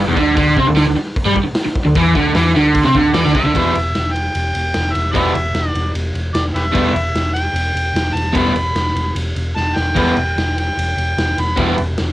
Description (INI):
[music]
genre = garage rock duo or trio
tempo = 150 BPM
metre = 4/4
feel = straight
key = E minor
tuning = A4 = 444 Hz
[part]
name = crunchy overdriven guitar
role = riff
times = 0.0-11.7 s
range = E2 to E4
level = -14 LUFS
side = equal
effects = cassette tape
[part]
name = hollow-body short-scale picked electric bass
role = bass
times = 0.0-12.1 s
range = E1 to C3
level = -20 LUFS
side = equal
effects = tube saturation
[part]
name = raw garage drum kit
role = drums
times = 0.2-12.1 s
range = crash cymbal, hi-hat, kick drum, ride cymbal, snare drum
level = -21 LUFS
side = equal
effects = cassette tape
[part]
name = overdriven harmonica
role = melody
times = 3.1-11.8 s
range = G4 to B5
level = -20 LUFS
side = equal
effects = cassette tape
[sound]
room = little or no reverb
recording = home recording on cassette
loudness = -14 LUFS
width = side -15 dB against mid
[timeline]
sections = 0.0-3.5 A section; 3.5-12.1 B section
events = drum fill 9.6-10.0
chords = 0.4 Cadd9; 3.5 Em